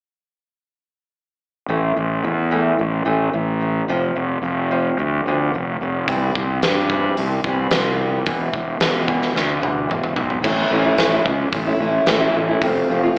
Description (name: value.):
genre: quiet-loud alternative rock.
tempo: 110 BPM.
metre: 4/4.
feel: straight.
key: unclear.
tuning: A4 = 440 Hz.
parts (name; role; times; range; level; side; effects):
fingerpicked old ladder-braced acoustic guitar; arpeggios; 1.7-13.2 s; E2 to F4; -24 LUFS; equal; digital delay.
fuzz fingered electric bass; bass; 1.7-13.2 s; E1 to G2; -23 LUFS; equal; overdrive.
huge arena drum kit; drums; 6.1-12.7 s; crash cymbal, hi-hat, kick drum, snare drum, toms; -24 LUFS; equal; none.
room: moderate club reverb, RT60 0.5 s.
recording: live gig heard through the venue's PA, club reverb, AM radio sound.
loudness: -20 LUFS.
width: mono.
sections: 1.7-10.4 A section; 10.4-13.2 B section.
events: drum fill 9.3-10.4.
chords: 1.7 A5; 3.9 F5; 6.1 C; 8.3 E5; 10.4 A; 12.6 F.